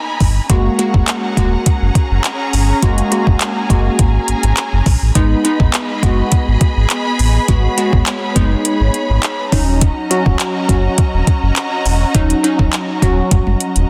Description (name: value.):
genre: dance-pop.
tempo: 103 BPM.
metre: 4/4.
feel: straight.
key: unclear.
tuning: A4 = 440 Hz.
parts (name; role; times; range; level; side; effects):
dark studio string section; sustained chords; 0.0-13.9 s; B3 to B5; -24 LUFS; equal; sidechain pumping.
downlifter; sound effects; 0.1-0.5 s; none; barely audible; none; none.
sub bass with octave; bass; 0.2-13.8 s; D#1 to A#1; -17 LUFS; equal; sidechain pumping.
smooth R&B drum kit; drums; 0.2-13.9 s; handclaps, hi-hat, kick drum, toms; -18 LUFS; equal; none.
glassy wavetable pluck; accompaniment; 0.5-13.9 s; F#3 to F#4; -21 LUFS; equal; chorus, sidechain pumping.
room: light reverb.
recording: dense, heavily limited modern master.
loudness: -15 LUFS.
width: mono.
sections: 0.0-13.9 A section.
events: drum fill 13.3-13.9.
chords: 0.5 F#add9; 5.2 G#m; 9.5 D#m7.